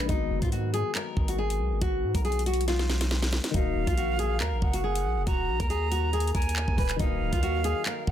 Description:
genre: hip hop, drill.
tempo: 139 BPM.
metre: 4/4.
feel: half-time.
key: Eb minor.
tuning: A4 = 440 Hz.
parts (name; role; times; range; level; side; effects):
nylon-string guitar; melody; 0.0-8.1 s; Eb4 to Cb5; -31 LUFS; left 2 dB; none.
dark grand piano; accompaniment; 0.0-8.1 s; D3 to Gb4; -36 LUFS; left 9 dB; none.
long sustained 808-style bass; bass; 0.0-8.1 s; D1 to Ab2; -29 LUFS; equal; none.
drill drum kit; drums; 0.1-8.1 s; handclaps, hi-hat, kick drum, snare drum; -29 LUFS; equal; none.
silver concert flute; second line; 3.5-8.1 s; F5 to Bb5; -33 LUFS; right 6 dB; ping-pong delay.
room: small room ambience.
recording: dense, heavily limited modern master.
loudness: -25 LUFS.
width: side -10 dB against mid.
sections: 0.0-8.1 A section.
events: drum fill 2.7-3.5.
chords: 0.1 Abm7; 3.5 Ebmadd9.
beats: | 0.09 0.52 0.95 1.38 | 1.82 2.25 2.68 3.11 | 3.54 3.97 4.41 4.84 | 5.27 5.70 6.13 6.56 | 7.00 7.43 7.86.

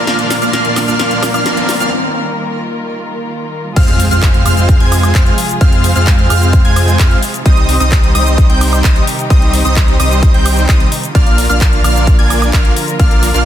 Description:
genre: EDM, festival progressive house.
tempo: 130 BPM.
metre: 4/4.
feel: straight.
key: unclear.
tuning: A4 = 440 Hz.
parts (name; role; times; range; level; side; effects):
electric guitar at the edge of break-up; accompaniment; 0.0-1.9 s; Bb2 to Bb4; -20 LUFS; left 3 dB; lush chorus, sidechain pumping, digital delay.
muted studio string section; sustained chords; 0.0-13.4 s; C3 to Bb4; -22 LUFS; equal; sidechain pumping.
plucky unison lead; arpeggios; 0.0-13.4 s; Eb6 to Ab6; -20 LUFS; equal; lush chorus, sidechain pumping, digital delay.
dense compressed supersaw; riff; 0.0-13.4 s; G3 to Ab5; -17 LUFS; right 1 dB; cassette tape, sidechain pumping, digital delay.
riser and impact; sound effects; 0.0-5.6 s; none; -23 LUFS; equal; none.
big-room dance drum kit; drums; 0.1-13.4 s; cabasa, crash cymbal, handclaps, hi-hat, snare drum, woodblock; -20 LUFS; equal; none.
saturated sub bass; bass; 3.8-13.4 s; Bb1 to F2; -14 LUFS; equal; sidechain pumping.
electronic kick drum; drums; 3.8-13.1 s; none; -10 LUFS; equal; none.
room: light reverb.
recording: dense, heavily limited modern master.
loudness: -9 LUFS.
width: side -11 dB against mid.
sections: 0.0-3.8 A section; 3.8-13.4 B section.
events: build-up 0.0-3.8; drum fill 0.0-1.9; break 1.9-3.8; drop 3.8-13.4; impact 3.8-5.6.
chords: 0.1 Ebadd9; 3.8 Fm; 7.5 Cm; 11.2 Bb.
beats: | 0.07 0.53 1.00 1.46 | 1.92 2.38 2.84 3.30 | 3.77 4.23 4.69 5.15 | 5.61 6.07 6.53 7.00 | 7.46 7.92 8.38 8.84 | 9.30 9.77 10.23 10.69 | 11.15 11.61 12.07 12.53 | 13.00.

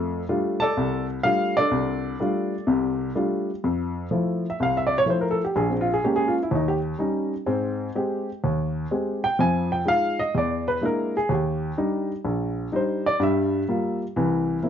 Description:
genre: solo jazz.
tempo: 125 BPM.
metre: 4/4.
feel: swing 67% on 8ths.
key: F major.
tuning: A4 = 440 Hz.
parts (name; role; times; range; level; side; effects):
dark baby grand piano; solo; 0.0-14.7 s; Bb1 to A5; -22 LUFS; equal; none.
room: moderate club reverb, RT60 0.6 s.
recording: dark, warm production, nothing above 7.5 kHz.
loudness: -22 LUFS.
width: side -8 dB against mid.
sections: 0.0-3.6 A section; 3.6-14.7 B section.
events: grand piano solo 3.6-14.7.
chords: 0.0 F69; 3.6 Fmaj7; 5.6 Bbm7; 6.5 Eb7; 7.5 Abmaj7; 9.4 Fm7; 10.3 E7#11; 11.3 Ebmaj7; 13.2 Gm7; 14.2 C7.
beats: 0.28 0.76 1.24 | 1.72 2.20 2.68 3.16 | 3.63 4.11 4.59 5.07 | 5.55 6.03 6.51 6.99 | 7.47 7.95 8.43 8.90 | 9.38 9.86 10.34 10.82 | 11.30 11.78 12.25 12.73 | 13.21 13.69 14.16 14.64.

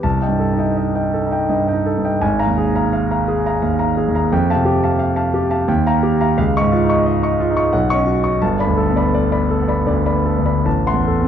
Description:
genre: classical, impressionist solo piano.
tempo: 72-90 BPM.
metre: 3/4.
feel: rubato.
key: unclear.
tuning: A4 = 441 Hz.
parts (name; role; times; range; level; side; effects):
clear concert grand piano; solo; 0.0-11.3 s; G1 to Db6; -15 LUFS; equal; none.
room: moderate recital hall reverb, RT60 1.6 s.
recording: dark, warm production.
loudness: -15 LUFS.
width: side -9 dB against mid.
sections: 0.0-11.3 A section.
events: none.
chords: 0.0 Cm6; 2.2 Absus2; 4.3 Fadd9; 5.7 Ebadd9; 6.4 Dbadd9; 7.7 Badd9; 8.4 Gadd9; 10.7 Am6.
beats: | 0.04 0.78 1.51 | 2.22 2.92 3.63 | 4.32 5.00 5.69 | 6.38 7.06 7.73 | 8.42 9.13 9.87 | 10.66.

